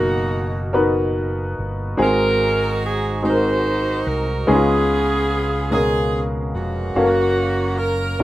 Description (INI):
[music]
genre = slow gospel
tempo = 48 BPM (dotted quarters)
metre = 6/8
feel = straight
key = F# major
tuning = A4 = 440 Hz
[part]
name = edgy saxophone section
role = melody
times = 0.0-8.2 s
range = A#3 to B#4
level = -21 LUFS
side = right 2 dB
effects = plate reverb
[part]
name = warm upright piano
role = accompaniment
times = 0.0-8.2 s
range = G#2 to E#5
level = -20 LUFS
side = left 1 dB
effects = plate reverb
[part]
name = fingered electric bass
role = bass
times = 0.0-8.2 s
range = E#1 to C#2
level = -25 LUFS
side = equal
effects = none
[sound]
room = moderate studio reverb, RT60 0.5 s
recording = rough home demo mix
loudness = -17 LUFS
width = side -15 dB against mid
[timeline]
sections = 0.0-8.2 A section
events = none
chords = 0.0 Bmaj7/F#; 2.0 G#7; 4.5 C#7; 7.0 F#maj7